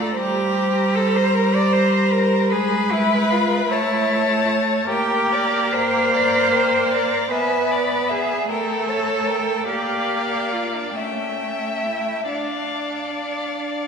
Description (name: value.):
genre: classical, slow romantic movement for string quartet.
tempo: 42-52 BPM (dotted quarters).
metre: 6/8.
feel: rubato.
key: unclear.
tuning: A4 = 440 Hz.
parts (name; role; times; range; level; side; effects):
rich violin; melody; 0.0-13.9 s; F5 to B5; -26 LUFS; left 8 dB; none.
rich violin; second line; 0.0-13.9 s; Bb4 to E5; -24 LUFS; left 2 dB; none.
clear viola; accompaniment; 0.0-13.9 s; G3 to D4; -23 LUFS; right 1 dB; none.
rich cello; bass; 0.0-13.7 s; C#4 to D5; -22 LUFS; right 3 dB; none.
room: wet concert hall reverb, RT60 2.1 s.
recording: minimal, uncompressed stereo recording.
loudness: -18 LUFS.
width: side -6 dB against mid.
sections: 0.0-13.9 A section.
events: none.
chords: 0.2 Gmadd11; 2.5 G#m6; 3.7 A; 4.9 Gm/Bb; 7.3 E7/B; 8.5 A7b9; 9.7 Bb; 11.0 A7; 12.3 Dm.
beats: | 0.19 1.35 | 2.52 3.70 | 4.89 6.13 | 7.31 8.49 | 9.69 10.96 | 12.31 13.71.